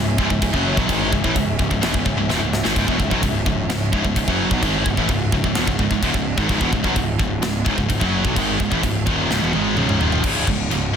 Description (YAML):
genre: heavy metal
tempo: 128 BPM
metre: 4/4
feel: straight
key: C# minor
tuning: A4 = 438 Hz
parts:
  - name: muted studio string section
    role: sustained chords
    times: 0.0-10.2 s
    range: E3 to E5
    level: -31 LUFS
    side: left 2 dB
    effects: none
  - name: crunchy overdriven guitar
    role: riff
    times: 0.0-10.2 s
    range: C#2 to G#3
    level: -25 LUFS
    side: equal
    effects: none
  - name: heavy high-gain guitar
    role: riff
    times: 0.0-11.0 s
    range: C#2 to G#3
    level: -24 LUFS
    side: left 11 dB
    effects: distortion
  - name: heavy high-gain guitar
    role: riff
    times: 0.0-10.9 s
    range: C#2 to G#3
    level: -24 LUFS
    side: right 10 dB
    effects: distortion
  - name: fuzz picked electric bass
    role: bass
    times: 0.0-10.9 s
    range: C#1 to B1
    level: -26 LUFS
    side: equal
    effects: overdrive
  - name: tight metal drum kit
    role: drums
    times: 0.2-10.8 s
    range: china cymbal, crash cymbal, kick drum, snare drum, toms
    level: -22 LUFS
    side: equal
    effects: none
room: light reverb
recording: dense, heavily limited modern master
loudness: -17 LUFS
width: side -7 dB against mid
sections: 0.0-10.2 A section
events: drum fill 2.3-2.8, 9.3-10.2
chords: 0.0 C#m; 10.2 C#5